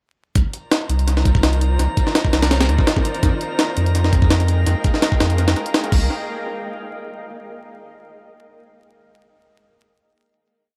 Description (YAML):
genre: drum and bass, jungle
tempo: 167 BPM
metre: 4/4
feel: straight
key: C minor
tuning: A4 = 440 Hz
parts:
  - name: saturated sub bass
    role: bass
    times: 0.4-6.1 s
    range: C2 to F2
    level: -20 LUFS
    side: equal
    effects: tube saturation
  - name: jungle sampler-style drum kit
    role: drums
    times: 0.4-6.0 s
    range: crash cymbal, hi-hat, kick drum, snare drum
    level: -20 LUFS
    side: equal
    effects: analog delay
  - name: drifting glass-harmonics texture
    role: texture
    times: 0.9-6.1 s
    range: Bb5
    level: -33 LUFS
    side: equal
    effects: chorus, built-in reverb
room: digital ambience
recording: echo-heavy mix, vinyl crackle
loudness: -18 LUFS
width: mono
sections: 0.4-6.1 drop; 6.1-7.5 final hit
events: drop 0.4-6.1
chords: 0.4 Cm11; 3.2 Fm11; 5.9 Cm11; 6.1 N.C.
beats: | 0.35 0.71 1.07 1.43 | 1.79 2.15 2.51 2.87 | 3.23 3.59 3.95 4.31 | 4.67 5.03 5.38 5.74 | 6.10